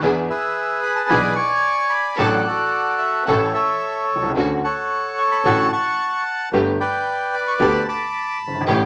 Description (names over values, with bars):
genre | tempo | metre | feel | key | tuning
tango | 111 BPM | 4/4 | rubato | D major | A4 = 441 Hz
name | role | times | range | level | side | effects
clear upright piano | accompaniment | 0.0-8.9 s | F#1 to A4 | -22 LUFS | equal | none
warm studio string section | stabs | 0.0-8.9 s | A3 to A4 | -29 LUFS | equal | none
clear double bass | bass | 0.0-8.9 s | G1 to E2 | -31 LUFS | equal | none
bandoneon | melody | 0.3-8.6 s | F#4 to D6 | -21 LUFS | equal | none
room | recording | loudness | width
wet small room reverb, RT60 0.5 s | none | -20 LUFS | mono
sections
0.0-8.9 A section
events
none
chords
0.0 E7; 2.2 D/A; 3.3 A; 4.4 Dmaj7; 6.5 Gadd9